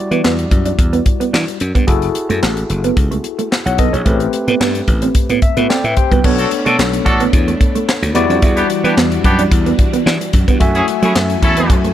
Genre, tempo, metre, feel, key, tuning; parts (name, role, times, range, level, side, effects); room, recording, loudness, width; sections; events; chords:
early-eighties boogie funk; 110 BPM; 4/4; straight; B minor; A4 = 440 Hz
barky tine electric piano; accompaniment; 0.0-11.9 s; G3 to G#5; -19 LUFS; left 4 dB; overdrive, slow stereo tremolo
mellow electric guitar; riff; 0.1-11.9 s; A3 to F#4; -20 LUFS; right 8 dB; lush chorus
slap bass; bass; 0.1-11.9 s; F#1 to F#3; -18 LUFS; equal
tight funk drum kit; drums; 0.1-11.9 s; crash cymbal, handclaps, hi-hat, kick drum, snare drum; -15 LUFS; equal
string machine, violins; sustained chords; 6.2-11.9 s; E3 to G#5; -24 LUFS; left 1 dB; ensemble chorus
clear horn section; second line; 6.4-11.8 s; B3 to A4; -19 LUFS; equal
studio ambience; -12 LUFS; side -11 dB against mid
0.0-6.2 A section; 6.2-11.9 B section
tine electric piano fill 5.2-6.2
0.0 Em9; 1.9 F#m9; 4.1 Am9; 6.2 Bm9; 8.2 Em9; 10.6 F#m9